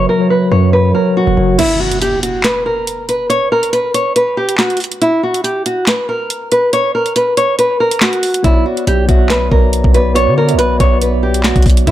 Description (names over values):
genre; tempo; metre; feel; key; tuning
hip hop, drill; 140 BPM; 4/4; half-time; B harmonic minor; A4 = 437 Hz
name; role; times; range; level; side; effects
nylon-string guitar; melody; 0.0-11.9 s; E4 to C#5; -14 LUFS; equal; low-pass filter
mellow tine electric piano; accompaniment; 0.0-1.6, 8.4-11.9 s; F#3 to E5; -16 LUFS; right 1 dB; medium stereo tremolo, low-pass filter
dark analog pad; sustained chords; 0.0-1.6 s; C#3 to A#4; -24 LUFS; left 2 dB; none
distorted 808-style bass; bass; 0.0-1.6, 8.4-11.9 s; F#1 to D3; -14 LUFS; equal; distortion
drill drum kit; drums; 1.6-11.9 s; crash cymbal, handclaps, hi-hat, kick drum, snare drum; -15 LUFS; equal; none
impact; sound effects; 1.6-3.3 s; none; -24 LUFS; equal; none
room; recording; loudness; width
little or no reverb; none; -11 LUFS; side -13 dB against mid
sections
0.0-1.6 A section; 1.6-11.9 B section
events
break 1.6-8.4; impact 1.6-3.3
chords
0.0 F#; 1.6 N.C.; 8.4 Bmadd9